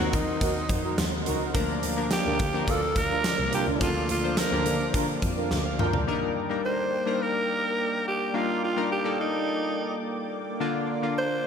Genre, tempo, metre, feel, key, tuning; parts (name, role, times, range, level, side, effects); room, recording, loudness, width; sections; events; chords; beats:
1980s-style pop; 106 BPM; 4/4; straight; A4 = 440 Hz
breathy alto saxophone; melody; 0.0-11.5 s; Eb4 to C5; -28 LUFS; right 2 dB; ping-pong delay
chorused retro synth keys; accompaniment; 0.0-11.5 s; D3 to G5; -30 LUFS; left 4 dB
brassy analog pad; sustained chords; 0.0-11.5 s; Bb3 to D6; -35 LUFS; right 2 dB; chorus
analog synth brass; stabs; 0.0-6.0 s; D4 to D5; -33 LUFS; right 2 dB; chorus, ping-pong delay
dark double bass; bass; 0.0-6.0 s; C2 to Eb3; -32 LUFS; equal
big rock drum kit; drums; 0.1-6.1 s; hi-hat, kick drum, snare drum, tambourine, toms; -29 LUFS; equal; gated reverb
moderate recital hall reverb, RT60 1.7 s, small room ambience; -24 LUFS; side -7 dB against mid
0.0-6.1 A section; 6.1-11.5 A section
drum fill 5.5-6.1
0.0 Ebm6; 1.5 Bb; 6.1 Ebmaj7; 10.6 Bb/D
0.41 0.98 | 1.55 2.11 2.68 3.25 | 3.81 4.38 4.94 5.51 | 6.08 6.64 7.21 7.77 | 8.34 8.91 9.47 10.04 | 10.60 11.17